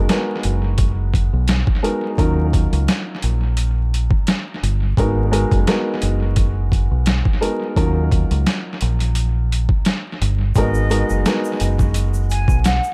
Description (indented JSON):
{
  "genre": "hip hop, boom-bap hip-hop",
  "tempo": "86 BPM",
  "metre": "4/4",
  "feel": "swing 54% on 16ths",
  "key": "G# dorian",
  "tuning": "A4 = 439 Hz",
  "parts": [
    { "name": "dark upright piano", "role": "accompaniment", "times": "0.0-12.9 s", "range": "F#3 to A#4", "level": "-26 LUFS", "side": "equal", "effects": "analog delay" },
    { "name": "deep dub fingered electric bass", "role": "bass", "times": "0.0-12.8 s", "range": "F#1 to D#2", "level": "-20 LUFS", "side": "equal", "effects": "none" },
    { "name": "boom bap sampler-style drum kit", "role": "drums", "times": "0.1-12.8 s", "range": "hi-hat, kick drum, snare drum", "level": "-22 LUFS", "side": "equal", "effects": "overdrive, analog delay" },
    { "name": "mellow concert flute", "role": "melody", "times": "10.6-12.9 s", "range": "D#5 to G#5", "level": "-28 LUFS", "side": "equal", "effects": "analog delay" },
    { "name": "tube shaker", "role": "percussion", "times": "10.6-12.9 s", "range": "none", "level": "-42 LUFS", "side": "equal", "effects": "analog delay" }
  ],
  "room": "light reverb, small room ambience",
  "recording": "echo-heavy mix, vinyl crackle",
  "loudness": "-18 LUFS",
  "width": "mono",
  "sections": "0.0-10.6 A section; 10.6-12.9 B section",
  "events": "none",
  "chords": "0.0 G#m7; 2.2 D#m7; 5.0 G#m7; 7.8 D#m7; 10.6 G#m7"
}